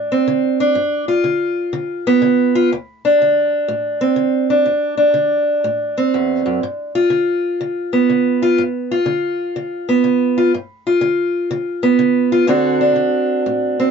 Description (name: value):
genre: blues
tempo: 123 BPM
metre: 4/4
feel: swing 66% on 8ths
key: unclear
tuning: A4 = 440 Hz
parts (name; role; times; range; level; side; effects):
- fingerpicked acoustic archtop guitar; solo; 0.0-13.9 s; D2 to F#4; -14 LUFS; right 1 dB; none
room: moderate booth ambience, RT60 0.2 s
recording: dark, warm production, nothing above 7.5 kHz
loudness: -14 LUFS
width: side -6 dB against mid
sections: 0.0-13.9 A section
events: none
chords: 0.0 D5; 0.8 G7; 2.7 D7(no3); 6.6 G7; 12.5 D7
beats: 0.27 | 0.75 1.24 1.73 2.22 | 2.71 3.19 3.68 4.17 | 4.66 5.15 5.64 6.12 | 6.61 7.10 7.59 8.08 | 8.57 9.06 9.55 10.04 | 10.53 11.01 11.50 11.99 | 12.48 12.97 13.46